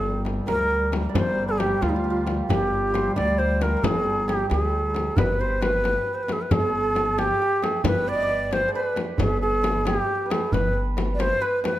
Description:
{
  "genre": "Persian modal ensemble",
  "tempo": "90 BPM (dotted quarters)",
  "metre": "6/8",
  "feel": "straight",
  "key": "G dastgah shur, G dastgah homayun from 5.2 s",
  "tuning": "A4 = 440 Hz",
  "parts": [
    { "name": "bright reedy ney", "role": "melody", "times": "0.0-11.8 s", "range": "Eb4 to D5", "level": "-24 LUFS", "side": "equal", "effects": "none" },
    { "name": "santur", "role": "second line", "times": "0.0-11.8 s", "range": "F4 to Eb5", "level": "-30 LUFS", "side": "right 6 dB", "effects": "none" },
    { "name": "upright bass", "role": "bass", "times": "0.0-11.3 s", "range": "G1 to D2", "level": "-27 LUFS", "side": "equal", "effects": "none" },
    { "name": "mellow duduk", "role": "drone", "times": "0.0-5.2 s", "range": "G3", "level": "-31 LUFS", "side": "left 1 dB", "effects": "none" },
    { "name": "tombak", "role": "percussion", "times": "0.2-11.7 s", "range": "none", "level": "-29 LUFS", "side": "right 2 dB", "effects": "none" },
    { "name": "frame drum", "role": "percussion", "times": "0.3-11.8 s", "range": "none", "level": "-28 LUFS", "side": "left 4 dB", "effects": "none" }
  ],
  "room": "moderate recital hall reverb, RT60 1.4 s",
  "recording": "close, detailed microphones",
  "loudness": "-21 LUFS",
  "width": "side -14 dB against mid",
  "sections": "0.0-5.2 A section; 5.2-11.8 B section",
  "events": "none",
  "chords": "none"
}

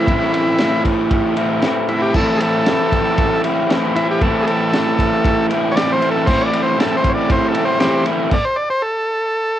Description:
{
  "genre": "garage rock duo or trio",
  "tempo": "116 BPM",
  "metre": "4/4",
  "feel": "straight",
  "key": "A minor",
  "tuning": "A4 = 445 Hz",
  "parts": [
    { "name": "overdriven combo organ", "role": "melody", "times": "0.0-9.6 s", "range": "E4 to D5", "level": "-18 LUFS", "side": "equal", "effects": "none" },
    { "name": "raw garage guitar", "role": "riff", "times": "0.0-8.3 s", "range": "A2 to E4", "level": "-17 LUFS", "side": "equal", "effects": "overdrive" },
    { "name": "crunchy breakbeat drum kit", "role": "drums", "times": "0.1-8.4 s", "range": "crash cymbal, kick drum, ride cymbal, snare drum", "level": "-21 LUFS", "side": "equal", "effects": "cassette tape" }
  ],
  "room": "little or no reverb",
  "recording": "home recording on cassette",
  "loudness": "-14 LUFS",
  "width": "side -11 dB against mid",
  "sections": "0.0-9.6 A section",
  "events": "transistor combo organ solo 0.0-9.6; stop 8.3-9.6",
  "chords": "0.0 Am"
}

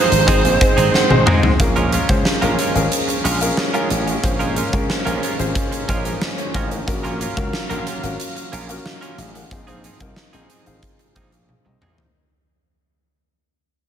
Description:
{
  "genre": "1980s-style pop",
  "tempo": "91 BPM",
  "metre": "4/4",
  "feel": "straight",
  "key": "Bb minor",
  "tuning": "A4 = 439 Hz",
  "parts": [
    { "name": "lead guitar through a small cranked amp", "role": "melody", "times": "0.0-1.2 s", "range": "C5", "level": "-20 LUFS", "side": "right 5 dB", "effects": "overdrive, ping-pong delay" },
    { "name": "clear grand piano", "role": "accompaniment", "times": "0.0-12.3 s", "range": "Ab3 to Bb5", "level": "-24 LUFS", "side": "left 3 dB", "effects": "none" },
    { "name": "mellow brass ensemble", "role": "sustained chords", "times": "0.0-12.1 s", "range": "Eb3 to F5", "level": "-29 LUFS", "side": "right 1 dB", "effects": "none" },
    { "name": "direct-recorded clean electric guitar", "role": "riff", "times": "0.0-12.0 s", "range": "F3 to Bb4", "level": "-26 LUFS", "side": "right 4 dB", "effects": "analog chorus" },
    { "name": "gritty slap bass", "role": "bass", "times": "0.1-12.1 s", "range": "Ab1 to Ab2", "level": "-23 LUFS", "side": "equal", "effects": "overdrive" },
    { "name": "huge arena drum kit", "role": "drums", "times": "0.1-12.1 s", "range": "hi-hat, kick drum, snare drum, toms", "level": "-20 LUFS", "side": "equal", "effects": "gated reverb" }
  ],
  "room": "light reverb, studio ambience",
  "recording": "none",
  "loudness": "-16 LUFS",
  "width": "side -9 dB against mid",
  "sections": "0.0-1.6 A section; 1.6-12.1 B section",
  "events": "grand piano fill 0.6-1.6; drum fill 0.9-1.6, 11.5-12.1; fade-out 1.6-12.1",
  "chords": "0.3 Ab; 1.6 Bbm7; 6.9 Gbmaj7; 9.5 Fm7"
}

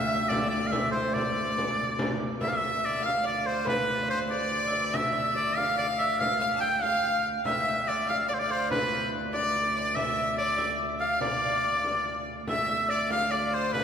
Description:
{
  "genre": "medieval dance",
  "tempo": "95 BPM (dotted quarters)",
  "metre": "6/8",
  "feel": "straight",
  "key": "D dorian",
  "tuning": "A4 = 439 Hz",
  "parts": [
    { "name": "bright shawm", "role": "melody", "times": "0.0-13.8 s", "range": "B4 to G5", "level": "-27 LUFS", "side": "equal", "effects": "none" },
    { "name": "clear fiddle", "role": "second line", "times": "0.0-13.8 s", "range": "B4 to A5", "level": "-34 LUFS", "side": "left 4 dB", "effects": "none" },
    { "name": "concert harp", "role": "second line", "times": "0.0-13.8 s", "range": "B4 to G5", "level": "-34 LUFS", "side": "right 4 dB", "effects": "none" },
    { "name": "rich viola da gamba", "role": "drone", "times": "0.0-13.8 s", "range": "D2", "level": "-36 LUFS", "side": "left 1 dB", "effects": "none" },
    { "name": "frame drum", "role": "percussion", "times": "0.3-13.8 s", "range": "none", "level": "-36 LUFS", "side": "left 1 dB", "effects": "none" }
  ],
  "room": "wet church reverb, RT60 3.5 s",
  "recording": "recorded in a church or concert hall",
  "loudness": "-25 LUFS",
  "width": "side -8 dB against mid",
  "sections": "0.0-2.4 A section; 2.4-12.5 B section; 12.5-13.8 B section",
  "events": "none",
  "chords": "none"
}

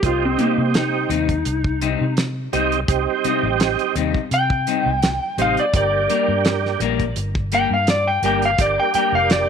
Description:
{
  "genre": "straight-eighth soul blues",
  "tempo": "84 BPM",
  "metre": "4/4",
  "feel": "swing 53% on 16ths",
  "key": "unclear",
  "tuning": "A4 = 440 Hz",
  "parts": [
    { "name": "electric slide guitar", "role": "melody", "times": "0.0-9.5 s", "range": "Bb3 to G5", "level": "-20 LUFS", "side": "left 1 dB", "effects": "none" },
    { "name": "tonewheel organ", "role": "accompaniment", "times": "0.0-9.5 s", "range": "G3 to G4", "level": "-22 LUFS", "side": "right 13 dB", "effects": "slow rotary speaker, chorus vibrato" },
    { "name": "vintage muted fingered electric bass", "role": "bass", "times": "0.0-9.4 s", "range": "F1 to C3", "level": "-24 LUFS", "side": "equal", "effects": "none" },
    { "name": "damped 70s drum kit", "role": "drums", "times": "0.0-9.5 s", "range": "hi-hat, kick drum, snare drum", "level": "-22 LUFS", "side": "right 1 dB", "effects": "none" },
    { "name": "clean electric guitar", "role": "stabs", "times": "0.4-9.2 s", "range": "C3 to Bb4", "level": "-25 LUFS", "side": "left 12 dB", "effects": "none" }
  ],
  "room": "light reverb, small room ambience",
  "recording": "1960s-style stereo with parts hard left and right",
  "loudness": "-17 LUFS",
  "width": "side -7 dB against mid",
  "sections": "0.0-9.5 A section",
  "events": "electric slide guitar solo 0.0-9.5",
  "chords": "0.0 Cm; 5.7 Gm"
}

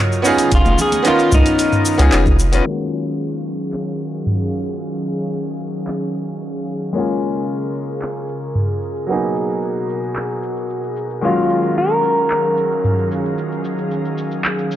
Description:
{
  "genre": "sunset chillout",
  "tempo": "112 BPM",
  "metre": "4/4",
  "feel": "straight",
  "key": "Eb minor",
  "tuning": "A4 = 440 Hz",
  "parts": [
    { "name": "bright grand piano", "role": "accompaniment", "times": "0.0-14.8 s", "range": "Eb3 to Cb5", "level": "-21 LUFS", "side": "moving between left 4 dB and right 4 dB", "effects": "auto-pan, low-pass filter, shimmer reverb" },
    { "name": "airy breathy pad", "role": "sustained chords", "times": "0.0-14.8 s", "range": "Cb3 to F5", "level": "-24 LUFS", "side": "equal", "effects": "chorus, vintage 12-bit sampler grit, shimmer reverb" },
    { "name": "smooth R&B drum kit", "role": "drums", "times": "0.1-14.8 s", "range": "handclaps, hi-hat, shaker, toms", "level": "-21 LUFS", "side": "equal", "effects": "low-pass filter on perc, low-pass filter on hats, low-pass filter on toms, low-pass filter on snare" },
    { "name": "clean electric guitar", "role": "melody", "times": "0.5-2.4, 11.2-13.1 s", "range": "Eb4 to Bb4", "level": "-19 LUFS", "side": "equal", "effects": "analog delay, shimmer reverb" },
    { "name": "round analog bass", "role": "bass", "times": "0.5-2.6 s", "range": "F1 to Db2", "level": "-14 LUFS", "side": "equal", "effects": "transformer saturation" },
    { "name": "electronic kick drum", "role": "drums", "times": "0.5-2.4 s", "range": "none", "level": "-18 LUFS", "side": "equal", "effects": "overdrive" },
    { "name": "congas", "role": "percussion", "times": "0.7-2.4 s", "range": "none", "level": "-28 LUFS", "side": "left 3 dB", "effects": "none" }
  ],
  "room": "light reverb, digital ambience",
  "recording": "dry, gritty hardware recording, transformer saturation, cassette tape, low-pass filter",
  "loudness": "-16 LUFS",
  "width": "side -12 dB against mid",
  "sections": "0.0-2.7 A section; 2.7-14.8 B section",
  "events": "filter sweep 2.7-14.8",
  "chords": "0.0 Ebm9; 0.5 Db9/F; 2.7 Ebm11; 7.0 Bbm7; 9.1 Abm9; 11.2 Ebm11"
}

